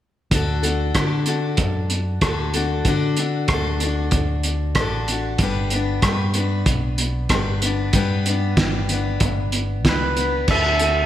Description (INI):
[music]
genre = folk rock and heartland rock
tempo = 94 BPM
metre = 4/4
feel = straight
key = D major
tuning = A4 = 441 Hz
[part]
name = picked steel-string acoustic guitar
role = accompaniment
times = 0.3-11.1 s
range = D3 to B4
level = -25 LUFS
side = left 5 dB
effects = slapback echo
[part]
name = picked electric bass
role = bass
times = 0.3-11.1 s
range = G1 to D3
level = -23 LUFS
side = equal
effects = none
[part]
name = cloth-damped thuddy drum kit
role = drums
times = 0.3-10.9 s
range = crash cymbal, hi-hat, kick drum, rim click, snare drum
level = -21 LUFS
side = right 1 dB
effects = none
[part]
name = pedal steel guitar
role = melody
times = 9.9-11.1 s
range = B4 to E5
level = -20 LUFS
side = right 1 dB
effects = slapback echo
[sound]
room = light reverb, studio reverb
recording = none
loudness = -18 LUFS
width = side -12 dB against mid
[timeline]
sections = 0.3-10.5 A section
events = none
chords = 0.3 D; 5.4 G; 10.5 D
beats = | 0.33 0.96 1.60 2.23 | 2.87 3.50 4.14 4.77 | 5.41 6.04 6.68 7.31 | 7.95 8.59 9.22 9.86 | 10.49